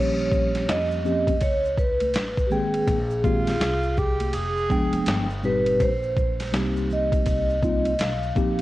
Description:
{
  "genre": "hip hop, jazz-hop",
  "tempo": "82 BPM",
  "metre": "4/4",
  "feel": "swing 63% on 16ths",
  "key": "Bb dorian",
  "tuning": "A4 = 439 Hz",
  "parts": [
    { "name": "vibraphone with medium mallets", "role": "melody", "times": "0.0-8.6 s", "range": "G4 to F5", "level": "-25 LUFS", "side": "right 1 dB", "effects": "cassette tape" },
    { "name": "mellow tine electric piano", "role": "accompaniment", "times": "0.0-8.6 s", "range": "Bb2 to G5", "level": "-26 LUFS", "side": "left 1 dB", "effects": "medium stereo tremolo" },
    { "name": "upright bass", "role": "bass", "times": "0.0-8.6 s", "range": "F1 to F2", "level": "-30 LUFS", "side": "equal", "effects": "none" },
    { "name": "maracas and congas", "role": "percussion", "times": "0.2-8.6 s", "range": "none", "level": "-41 LUFS", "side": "right 4 dB", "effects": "none" },
    { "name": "boom bap sampler-style drum kit", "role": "drums", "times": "0.3-8.6 s", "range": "hi-hat, kick drum, ride cymbal, snare drum", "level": "-26 LUFS", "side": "equal", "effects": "none" },
    { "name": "warm tenor saxophone", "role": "second line", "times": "3.2-5.3 s", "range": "F4 to Ab4", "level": "-28 LUFS", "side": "right 2 dB", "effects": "none" }
  ],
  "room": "light reverb, studio ambience",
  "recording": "home recording on cassette",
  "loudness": "-21 LUFS",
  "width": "side -16 dB against mid",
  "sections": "0.0-8.6 A section",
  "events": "none",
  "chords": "0.0 Bbm69; 2.1 Asus2; 2.9 Abmaj9/Bb; 5.1 G7b9; 5.8 F9sus4/Bb"
}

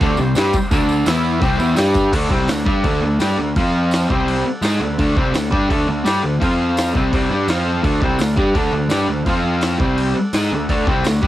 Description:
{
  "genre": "garage rock duo or trio",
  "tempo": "168 BPM",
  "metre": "4/4",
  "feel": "straight",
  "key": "unclear",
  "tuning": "A4 = 438 Hz",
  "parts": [
    { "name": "combo organ", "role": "sustained chords", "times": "0.0-11.3 s", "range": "C4 to B5", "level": "-30 LUFS", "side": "right 1 dB", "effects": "cassette tape" },
    { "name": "fuzz guitar", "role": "riff", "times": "0.0-11.3 s", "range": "C3 to G#4", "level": "-17 LUFS", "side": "equal", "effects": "distortion, cassette tape" },
    { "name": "growling picked electric bass", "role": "bass", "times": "0.0-11.3 s", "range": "C2 to G#2", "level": "-22 LUFS", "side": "equal", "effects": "overdrive" },
    { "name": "jungle sampler-style drum kit", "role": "drums", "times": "0.0-11.3 s", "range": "crash cymbal, hi-hat, kick drum, snare drum", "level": "-22 LUFS", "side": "equal", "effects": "none" },
    { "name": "tambourine", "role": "percussion", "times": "0.0-11.1 s", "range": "none", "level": "-34 LUFS", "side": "right 4 dB", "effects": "none" }
  ],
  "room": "little or no reverb",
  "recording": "home recording on cassette",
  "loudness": "-15 LUFS",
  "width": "side -14 dB against mid",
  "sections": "0.0-2.1 A section; 2.1-11.3 B section",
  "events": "transistor combo organ fill 1.4-2.1, 3.9-5.0",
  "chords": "0.0 C5; 0.7 D5; 1.1 E5; 1.4 C5; 1.8 G5; 2.1 D; 3.6 F5; 4.1 C5; 4.4 D; 6.4 F5; 6.9 D; 7.5 F5; 7.8 D; 9.3 F5; 9.8 C5; 10.2 D"
}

